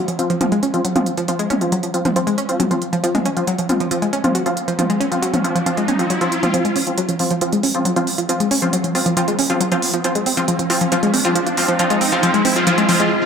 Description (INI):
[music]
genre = driving peak-time techno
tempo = 137 BPM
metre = 4/4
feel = straight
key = F phrygian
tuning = A4 = 441 Hz
[part]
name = analog pluck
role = riff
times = 0.0-13.1 s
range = F3 to Db4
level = -19 LUFS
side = equal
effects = chorus, digital delay
[part]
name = techno drum kit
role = drums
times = 0.1-13.1 s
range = hi-hat, toms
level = -22 LUFS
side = right 1 dB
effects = none
[part]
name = supersaw stab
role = stabs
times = 0.2-13.0 s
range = F3 to F4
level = -20 LUFS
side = left 1 dB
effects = lush chorus, low-pass filter, digital delay
[part]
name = riser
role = sound effects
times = 4.5-13.1 s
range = none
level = -26 LUFS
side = right 1 dB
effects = none
[sound]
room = wet plate reverb, RT60 1.9 s, digital ambience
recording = bright 1980s-style digital production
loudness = -16 LUFS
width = side -7 dB against mid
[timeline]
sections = 0.0-6.5 A section; 6.5-13.3 B section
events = riser 4.5-6.5, 6.5-13.1; build-up 6.5-13.3; filter sweep on synth arpeggio sound 6.5-13.3; filter sweep on supersaw synth 6.5-13.3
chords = 0.0 F5